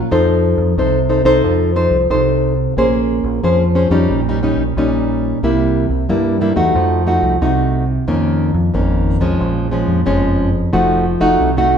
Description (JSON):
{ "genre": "samba and choro", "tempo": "90 BPM", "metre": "4/4", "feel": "straight", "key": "unclear", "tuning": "A4 = 440 Hz", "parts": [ { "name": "nylon-string guitar", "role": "accompaniment", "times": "0.0-11.8 s", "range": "F2 to C5", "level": "-14 LUFS", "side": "equal", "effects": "none" }, { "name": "deep dub fingered electric bass", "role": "bass", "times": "0.1-11.8 s", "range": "F1 to G2", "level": "-19 LUFS", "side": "equal", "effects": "none" } ], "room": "wet large studio reverb, RT60 1.2 s", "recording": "band playing live in one room", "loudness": "-13 LUFS", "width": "side -7 dB against mid", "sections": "0.0-11.8 A section", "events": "none", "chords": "0.1 F7; 2.8 Bbm9; 4.1 Eb7/Bb; 5.4 C7; 6.7 F7b9; 8.1 Db69/F; 9.4 Bbm7; 10.7 F7b9", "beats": "| 0.12 0.78 1.44 2.10 | 2.77 3.43 4.09 4.76 | 5.42 6.08 6.75 7.41 | 8.07 8.74 9.40 10.06 | 10.73 11.39" }